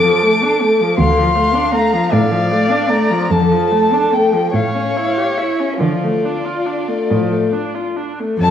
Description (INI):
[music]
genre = classical, slow romantic movement for string quartet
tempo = 45-53 BPM (dotted quarters)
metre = 6/8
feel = rubato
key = D minor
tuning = A4 = 440 Hz
[part]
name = dark violin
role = melody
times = 0.0-8.5 s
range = D5 to D6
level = -19 LUFS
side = left 4 dB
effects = none
[part]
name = dark violin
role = second line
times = 0.0-7.7 s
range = F4 to F5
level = -19 LUFS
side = left 1 dB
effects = none
[part]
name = warm viola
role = accompaniment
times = 0.0-8.5 s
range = D3 to A4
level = -18 LUFS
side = equal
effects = none
[part]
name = dark cello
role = bass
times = 0.0-8.5 s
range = D2 to D3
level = -19 LUFS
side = equal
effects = none
[sound]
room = wet recital hall reverb, RT60 1.6 s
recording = worn, warbling old tape, cassette tape, warbly pitch drift, studio reverb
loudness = -13 LUFS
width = side -9 dB against mid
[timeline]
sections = 0.0-8.4 A section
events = none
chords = 0.0 Dm/F; 1.0 Dm; 3.3 Dm/F; 4.6 A7; 5.8 Dm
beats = | 0.99 2.12 | 3.31 4.55 | 5.82 7.11 | 8.40